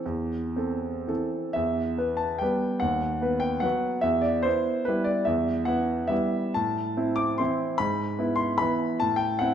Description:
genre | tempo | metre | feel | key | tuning
classical, piano waltz | 114-154 BPM | 3/4 | rubato | E minor | A4 = 440 Hz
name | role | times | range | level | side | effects
clear concert grand piano | solo | 0.0-9.5 s | D#2 to D6 | -24 LUFS | equal | none
room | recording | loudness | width
wet recital hall reverb, RT60 1.5 s | none | -24 LUFS | side -9 dB against mid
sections
0.0-1.6 A section; 1.6-9.5 B section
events
none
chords
0.0 Am; 1.6 Em; 2.8 B/D#; 4.1 Em; 6.6 Am; 7.8 E/G#; 9.0 Am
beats
| 0.06 0.57 1.09 | 1.57 1.99 2.41 | 2.83 3.23 3.64 | 4.05 4.46 4.88 | 5.28 5.68 6.11 | 6.57 6.98 7.40 | 7.80 8.20 8.61 | 9.01 9.41

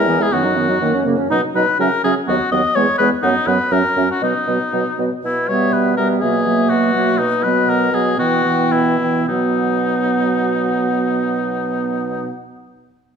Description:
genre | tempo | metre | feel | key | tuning
quick classical-period movement for wind quintet | 104-126 BPM | 2/4 | straight | B major | A4 = 439 Hz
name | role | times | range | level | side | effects
wooden flute | melody | 0.0-12.3 s | A#4 to G#5 | -25 LUFS | left 11 dB | none
warm oboe | second line | 0.0-12.3 s | D#4 to D#5 | -19 LUFS | left 3 dB | none
warm French horn | accompaniment | 0.0-12.3 s | C#3 to G#3 | -24 LUFS | right 1 dB | none
warm clarinet | accompaniment | 0.0-12.3 s | A#3 to E4 | -20 LUFS | right 6 dB | none
dark bassoon | bass | 0.0-12.3 s | D#2 to C#3 | -22 LUFS | right 2 dB | none
room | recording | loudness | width
wet recital hall reverb, RT60 1.5 s | none | -15 LUFS | side -7 dB against mid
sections
0.0-5.2 A section; 5.2-9.3 B section; 9.3-11.5 C section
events
slowing down 6.7-9.3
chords
0.3 B/F#; 0.8 F#; 1.3 B; 1.8 F#7/C#; 2.3 B/D#; 2.8 C#m7/E; 3.2 B/F#; 3.7 F#; 4.2 B; 5.2 Em/B; 6.2 F#7/B; 7.2 B; 8.2 Em/B; 9.3 B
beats
| 0.32 0.81 | 1.30 1.79 | 2.28 2.75 | 3.23 3.72 | 4.22 4.73 | 5.24 5.73 | 6.22 6.71 | 7.19 7.68 | 8.19 8.72 | 9.29 9.85 | 10.41 10.98

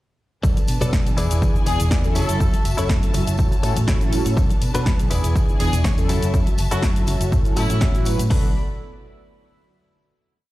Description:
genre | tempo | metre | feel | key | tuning
filtered disco house | 122 BPM | 4/4 | swing 53% on 16ths | B dorian | A4 = 440 Hz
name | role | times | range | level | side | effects
mellow synth brass | accompaniment | 0.4-8.5 s | D3 to B4 | -27 LUFS | equal | chorus, phaser, sidechain pumping
dark studio string section | sustained chords | 0.4-8.5 s | D4 to B5 | -33 LUFS | left 2 dB | sidechain pumping
direct-recorded clean electric guitar | riff | 0.4-8.5 s | C#4 to D5 | -29 LUFS | left 2 dB | sidechain pumping
fingered electric bass | bass | 0.4-8.5 s | E1 to B2 | -22 LUFS | equal | sidechain pumping
house drum kit | drums | 0.4-8.4 s | hi-hat, kick drum | -20 LUFS | equal | studio reverb
house drum kit | drums | 0.4-8.3 s | hi-hat, shaker, snare drum | -30 LUFS | equal | sidechain pumping on perc, studio reverb, sidechain pumping on hats
tambourine and congas | percussion | 0.4-8.3 s | none | -33 LUFS | left 3 dB | sidechain pumping on perc
warm horn section | melody | 1.7-8.1 s | E4 to A4 | -32 LUFS | right 1 dB | sidechain pumping, digital delay
room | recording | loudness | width
little or no reverb | played on a big sound system in a bare room, stone room reverb | -17 LUFS | side -17 dB against mid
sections
0.4-8.3 drop; 8.3-10.3 final chord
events
drop 0.4-8.3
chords
0.4 Bm7; 1.2 E7; 2.2 F#m7; 3.4 A6; 4.4 Bm7; 5.1 E7; 6.1 F#m7; 7.3 A6; 8.3 Bm7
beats
| 0.44 0.93 1.42 1.91 | 2.40 2.90 3.39 3.88 | 4.37 4.86 5.36 5.85 | 6.34 6.83 7.32 7.81 | 8.31

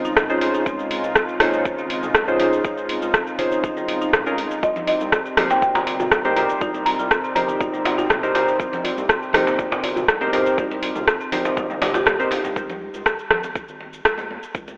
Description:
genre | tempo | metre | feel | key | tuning
afro house | 121 BPM | 4/4 | straight | C phrygian | A4 = 440 Hz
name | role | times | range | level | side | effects
warm analog pad | sustained chords | 0.0-12.5 s | C3 to F4 | -32 LUFS | equal | lush chorus, sidechain pumping
marimba with medium mallets | arpeggios | 0.0-12.5 s | G3 to G4 | -32 LUFS | equal | vintage 12-bit sampler grit, sidechain pumping, tape echo
deep mellow chord stab | stabs | 0.0-12.3 s | C4 to C5 | -26 LUFS | equal | chorus, sidechain pumping, tape echo
round analog bass | bass | 0.0-14.8 s | G1 to Db2 | -39 LUFS | equal | sidechain pumping
deep house drum kit | drums | 0.0-14.8 s | cabasa, hi-hat, rim click, toms | -24 LUFS | equal | overdrive
electronic kick drum | drums | 0.2-14.7 s | none | -30 LUFS | equal | none
folk marimba with soft mallets | melody | 4.6-7.6 s | Eb5 to Bb5 | -26 LUFS | equal | tape echo
djembe | percussion | 4.6-12.4 s | none | -30 LUFS | equal | none
congas | percussion | 4.8-14.8 s | none | -39 LUFS | equal | none
room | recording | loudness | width
moderate lush hall reverb, RT60 2.0 s, small room ambience | telephone sound | -21 LUFS | mono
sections
0.0-12.6 A section; 12.6-14.8 B section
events
drop 0.0-12.6; drum fill 11.6-12.6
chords
0.0 Dbmaj7; 4.6 Cm7; 12.6 Db5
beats
0.17 | 0.66 1.16 1.66 2.15 | 2.65 3.14 3.64 4.13 | 4.63 5.13 5.62 6.12 | 6.61 7.11 7.61 8.10 | 8.60 9.09 9.59 10.09 | 10.58 11.08 11.57 12.07 | 12.56 13.06 13.56 14.05 | 14.55

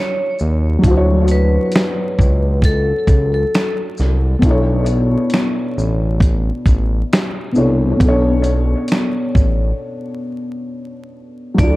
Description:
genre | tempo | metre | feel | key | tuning
lo-fi hip hop | 67 BPM | 4/4 | swing 55% on 16ths | B minor | A4 = 439 Hz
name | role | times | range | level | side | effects
vibraphone with hard mallets | melody | 0.0-3.7, 11.6-11.8 s | A4 to D5 | -21 LUFS | equal | tape echo
felt-muted upright piano | accompaniment | 0.0-11.8 s | B2 to C#5 | -19 LUFS | left 1 dB | tape echo
smooth gliding synth bass | bass | 0.4-11.8 s | A1 to D#2 | -16 LUFS | equal | none
dusty soul sampler-style drum kit | drums | 0.4-11.8 s | finger snaps, hi-hat, kick drum, shaker, snare drum | -16 LUFS | equal | none
room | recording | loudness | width
light reverb | echo-heavy mix, vinyl crackle | -13 LUFS | side -19 dB against mid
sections
0.0-11.6 A section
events
break 9.8-11.6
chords
0.0 Dmaj7; 4.4 Bm11; 8.0 Bm9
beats
| 0.84 1.73 2.63 3.52 | 4.42 5.32 6.21 7.11 | 8.00 8.90 9.79 10.69 | 11.58

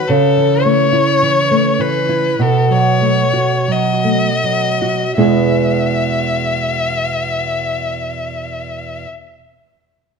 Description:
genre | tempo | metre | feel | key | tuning
romantic duo for violin and classical guitar | 38-54 BPM | 4/4 | rubato | E major | A4 = 444 Hz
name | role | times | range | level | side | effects
rich violin | melody | 0.0-9.1 s | A4 to E5 | -17 LUFS | left 4 dB | none
nylon-string guitar | accompaniment | 0.0-9.1 s | E2 to G#4 | -15 LUFS | right 2 dB | none
room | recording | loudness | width
moderate scoring stage reverb, RT60 1.4 s | close, detailed microphones | -13 LUFS | side -5 dB against mid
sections
0.0-5.2 A section; 5.2-10.2 B section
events
slowing down 0.0-5.2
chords
0.1 A/C#; 2.4 B7; 5.2 E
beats
| 0.09 1.22 2.41 3.72 | 5.20 6.53 7.84

